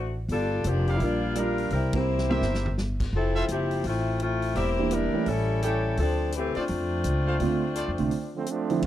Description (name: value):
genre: jazz, big band swing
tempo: 169 BPM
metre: 4/4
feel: swing 64% on 8ths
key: D minor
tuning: A4 = 442 Hz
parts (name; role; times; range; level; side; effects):
- warm saxophone section; melody; 0.0-8.4 s; E3 to C5; -28 LUFS; left 3 dB; none
- upright bass; bass; 0.0-8.9 s; E1 to F2; -28 LUFS; equal; none
- vintage drum kit; drums; 0.3-8.9 s; crash cymbal, hi-hat, kick drum, ride cymbal, snare drum, toms; -35 LUFS; equal; none
- clear trumpet section; stabs; 0.9-7.9 s; F4 to G5; -33 LUFS; right 1 dB; none
- dark concert grand piano; accompaniment; 1.0-2.4, 4.8-5.3, 7.4-8.8 s; D3 to Bb4; -28 LUFS; right 5 dB; none
- bright trombone section; second line; 8.3-8.9 s; D3 to F4; -28 LUFS; right 6 dB; none
room: studio reverb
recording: dry, close 1970s-style studio recording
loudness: -24 LUFS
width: side -12 dB against mid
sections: 0.0-8.8 A section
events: band accent 1.9; drum fill 2.1-2.8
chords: 0.3 Gm7; 1.7 C7; 3.1 Fmaj7; 4.6 Em7b5; 5.3 A7; 6.0 Dm7